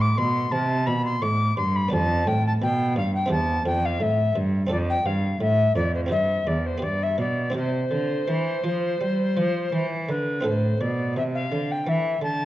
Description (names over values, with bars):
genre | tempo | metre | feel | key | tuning
classical, baroque-style sonata movement with continuo | 85 BPM | 4/4 | straight | C major | A4 = 435 Hz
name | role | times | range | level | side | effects
mellow alto recorder | melody | 0.0-12.5 s | B4 to D6 | -25 LUFS | left 2 dB | none
buff-stop harpsichord | accompaniment | 0.0-12.5 s | E2 to A4 | -30 LUFS | right 1 dB | none
rich cello | bass | 0.0-12.5 s | E2 to G3 | -24 LUFS | right 1 dB | none
room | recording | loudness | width
wet recital hall reverb, RT60 1.7 s | worn, warbling old tape, cassette tape, warbly pitch drift | -21 LUFS | side -14 dB against mid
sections
0.0-10.5 A section; 10.5-12.5 A section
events
none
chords
0.0 Dm7; 1.9 G7/F; 3.3 C/E; 4.7 Dm7/F; 6.1 C/G; 6.8 G; 7.6 C; 10.5 Am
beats
0.53 1.23 | 1.93 2.62 3.31 4.01 | 4.71 5.41 6.12 6.83 | 7.55 8.28 9.01 9.73 | 10.45 11.16 11.87